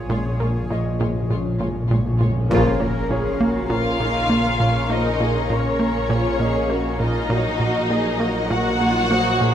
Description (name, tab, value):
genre	cinematic, suspense film score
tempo	100 BPM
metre	4/4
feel	straight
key	Bb minor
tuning	A4 = 441 Hz
part	bubbling stepped-filter texture	sustained chords	0.0-9.5 s	Db4 to F5	-30 LUFS	equal	chorus, built-in reverb
part	muted studio cello section	bass	0.0-9.5 s	Bb2 to Bb4	-29 LUFS	right 1 dB	none
part	muted studio double bass section	bass	0.0-9.5 s	Bb1	-29 LUFS	right 1 dB	none
part	deep rumbling drone	drone	0.0-9.5 s	Bb1	-32 LUFS	left 1 dB	built-in reverb
part	timpani	percussion	0.0-3.4 s	Bb2	-25 LUFS	left 1 dB	none
part	warm baby grand piano	texture	0.0-9.5 s	Db4 to Eb5	-34 LUFS	left 3 dB	none
part	muted studio violin section	melody	0.1-9.5 s	Db5 to Gb5	-26 LUFS	left 2 dB	none
part	muted studio violin section	second line	0.1-9.5 s	Db4 to Gb4	-28 LUFS	left 1 dB	none
part	muted studio viola section	accompaniment	0.1-9.5 s	Db3 to Bb3	-29 LUFS	equal	none
part	dark French horn section	sustained chords	0.1-8.7 s	F3 to Db4	-29 LUFS	left 4 dB	none
part	plucky analog bass	riff	0.1-9.5 s	Bb2 to Bb3	-23 LUFS	right 2 dB	none
part	impact	sound effects	2.5-4.9 s	none	-32 LUFS	left 1 dB	none
part	muted studio violin section	texture	2.5-7.0 s	Bb5 to Db6	-35 LUFS	left 3 dB	none
room	moderate scoring stage reverb, RT60 1.7 s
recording	none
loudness	-18 LUFS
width	side -10 dB against mid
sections	0.0-2.5 A section; 2.5-9.5 B section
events	timpani fill 0.0-2.5; band accent 2.5-3.1; impact 2.5-4.9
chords	0.0 Bbm7; 2.5 Bbm; 7.3 Ebm/Bb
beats	| 0.10 0.70 1.30 1.90 | 2.50 3.10 3.70 4.30 | 4.90 5.50 6.10 6.70 | 7.30 7.90 8.50 9.10